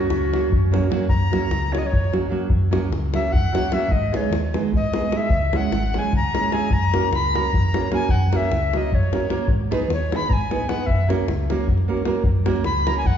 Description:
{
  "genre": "balkan folk, Balkan wedding band",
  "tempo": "300 BPM (eighths)",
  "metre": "7/8",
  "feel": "straight",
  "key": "F# mixolydian",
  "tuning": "A4 = 445 Hz",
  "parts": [
    { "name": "mellow clarinet", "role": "melody", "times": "0.0-0.9 s", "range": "F#4", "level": "-26 LUFS", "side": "right 3 dB", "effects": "none" },
    { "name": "bright reedy tenor recorder", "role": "second line", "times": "0.0-13.2 s", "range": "C#4 to B5", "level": "-25 LUFS", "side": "left 2 dB", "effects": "none" },
    { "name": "nylon-string guitar", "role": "accompaniment", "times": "0.0-13.0 s", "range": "F#3 to B4", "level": "-25 LUFS", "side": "right 4 dB", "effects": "none" },
    { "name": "davul", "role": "percussion", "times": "0.0-13.2 s", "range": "none", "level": "-24 LUFS", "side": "left 1 dB", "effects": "none" },
    { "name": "fingered electric bass", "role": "bass", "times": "0.1-13.2 s", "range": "G#1 to G#2", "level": "-24 LUFS", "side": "equal", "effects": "none" }
  ],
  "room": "wet recital hall reverb, RT60 1.7 s",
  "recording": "heard from further back in the room, nothing above 7.6 kHz",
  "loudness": "-18 LUFS",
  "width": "side -9 dB against mid",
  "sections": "0.0-1.1 A section; 1.1-13.2 B section",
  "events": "recorder solo 1.1-13.2",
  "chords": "0.0 F#; 3.9 G#m; 5.3 C#m; 6.7 F#; 9.5 G#m; 10.9 F#"
}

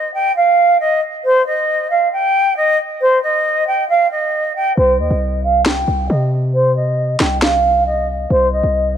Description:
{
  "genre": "hip hop, trap",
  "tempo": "136 BPM",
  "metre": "4/4",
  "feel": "half-time",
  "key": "C minor",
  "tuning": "A4 = 436 Hz",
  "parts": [
    { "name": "concert flute", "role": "melody", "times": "0.0-8.9 s", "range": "C5 to G5", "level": "-14 LUFS", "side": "right 1 dB", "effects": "low-pass filter, digital delay" },
    { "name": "hard-hitting 808-style bass", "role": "bass", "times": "4.8-9.0 s", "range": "C2 to C3", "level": "-18 LUFS", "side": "equal", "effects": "none" },
    { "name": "electronic snare drum and finger snaps", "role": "drums", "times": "5.7-7.5 s", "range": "none", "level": "-18 LUFS", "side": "equal", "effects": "vintage 12-bit sampler grit" }
  ],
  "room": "light reverb",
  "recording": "none",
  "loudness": "-13 LUFS",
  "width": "side -9 dB against mid",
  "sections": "0.0-4.8 A section; 4.8-9.0 B section",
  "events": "hi-hats muted 4.8-9.0; filter sweep on flute 4.8-9.0",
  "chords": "0.0 N.C.; 4.8 Cm"
}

